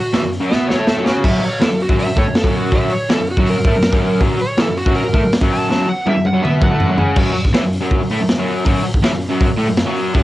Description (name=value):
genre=garage rock duo or trio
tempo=162 BPM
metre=4/4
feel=straight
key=unclear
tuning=A4 = 440 Hz
part: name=overdriven slide guitar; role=melody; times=0.0-7.2 s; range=F#4 to A5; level=-21 LUFS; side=right 1 dB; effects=cassette tape
part: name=raw garage guitar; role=riff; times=0.1-10.2 s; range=E2 to C#4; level=-18 LUFS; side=equal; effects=overdrive, cassette tape
part: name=raw garage drum kit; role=drums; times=0.1-10.2 s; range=crash cymbal, hi-hat, kick drum, snare drum, toms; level=-16 LUFS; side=equal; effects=cassette tape
room=small room ambience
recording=home recording on cassette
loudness=-13 LUFS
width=side -16 dB against mid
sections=0.0-7.2 A section; 7.2-10.2 B section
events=electric slide guitar solo 0.0-7.2; drum fill 0.5-1.2, 5.7-7.2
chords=0.0 F#5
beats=0.13 0.50 0.87 | 1.24 1.61 1.99 2.36 | 2.73 3.10 3.47 3.84 | 4.21 4.58 4.95 5.32 | 5.69 6.06 6.43 6.80 | 7.18 7.55 7.92 8.29 | 8.66 9.03 9.40 9.77 | 10.14